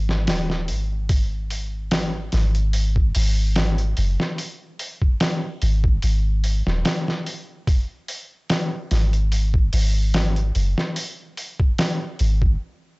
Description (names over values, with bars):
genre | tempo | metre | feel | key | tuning
trip hop | 73 BPM | 4/4 | swing 54% on 16ths | unclear | A4 = 436 Hz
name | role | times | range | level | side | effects
soft 808-style bass | bass | 0.0-12.6 s | D#1 to G#1 | -20 LUFS | equal | tube saturation
trip hop sampler-style drum kit | drums | 0.1-12.6 s | hi-hat, kick drum, snare drum | -22 LUFS | equal | small room ambience
room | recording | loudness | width
digital ambience | dry, gritty hardware recording, transformer saturation, cassette tape, nothing above 7.9 kHz | -19 LUFS | side -26 dB against mid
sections
0.0-13.0 A section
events
stop 12.6-13.0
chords
none